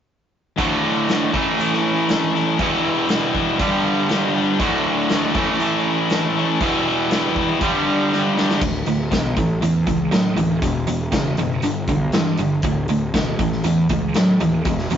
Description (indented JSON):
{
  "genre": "classic rock",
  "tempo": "120 BPM",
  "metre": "4/4",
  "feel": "straight",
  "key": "D major",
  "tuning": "A4 = 440 Hz",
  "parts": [
    { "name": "biting overdriven guitar", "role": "riff", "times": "0.6-15.0 s", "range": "D2 to A3", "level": "-20 LUFS", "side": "right 4 dB", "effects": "none" },
    { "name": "cranked stack guitar", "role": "riff", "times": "0.6-15.0 s", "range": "D2 to A4", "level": "-22 LUFS", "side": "left 6 dB", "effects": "overdrive" },
    { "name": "big rock drum kit", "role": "drums", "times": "0.6-15.0 s", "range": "crash cymbal, hi-hat, kick drum, snare drum", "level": "-24 LUFS", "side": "left 1 dB", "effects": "none" },
    { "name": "fuzz picked electric bass", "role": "bass", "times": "8.6-15.0 s", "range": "D1 to A2", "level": "-25 LUFS", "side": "equal", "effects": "overdrive" }
  ],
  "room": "moderate stone room reverb, RT60 1.1 s",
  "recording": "rough rehearsal-room recording, nothing above 7.6 kHz",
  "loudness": "-17 LUFS",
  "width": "side -9 dB against mid",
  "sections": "0.6-8.6 A section; 8.6-15.0 B section",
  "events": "drum fill 8.1-8.6",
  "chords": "0.6 D; 1.3 A; 2.6 Em; 3.6 G; 4.6 D; 5.4 A; 6.6 Em; 7.6 G; 8.6 D5; 9.4 A; 10.6 E5; 11.6 G; 12.6 D5; 13.4 A"
}